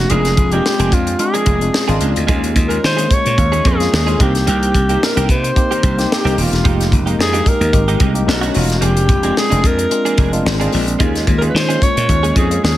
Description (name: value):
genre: polished 1980s jazz-funk pop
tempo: 110 BPM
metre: 4/4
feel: swing 54% on 16ths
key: unclear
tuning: A4 = 440 Hz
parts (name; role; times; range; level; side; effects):
- warm alto saxophone; melody; 0.0-12.8 s; F4 to Db5; -19 LUFS; equal; tape echo
- tine electric piano; accompaniment; 0.0-12.8 s; Ab3 to Bb4; -20 LUFS; left 2 dB; medium stereo tremolo, lush chorus
- slap bass; bass; 0.0-12.8 s; Eb1 to Eb3; -17 LUFS; equal; none
- direct-recorded clean electric guitar; riff; 0.1-12.7 s; Eb3 to Ab4; -24 LUFS; right 6 dB; analog chorus
- tight funk drum kit; drums; 0.1-12.8 s; hi-hat, kick drum, snare drum; -17 LUFS; equal; gated reverb
room: studio ambience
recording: none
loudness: -12 LUFS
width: side -14 dB against mid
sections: 0.0-12.8 A section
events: none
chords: 0.1 Bb7/F; 2.3 Eb7sus4; 4.2 Cm7; 6.6 Fm11; 8.3 B9; 8.8 Bb7/F; 11.0 Eb7sus4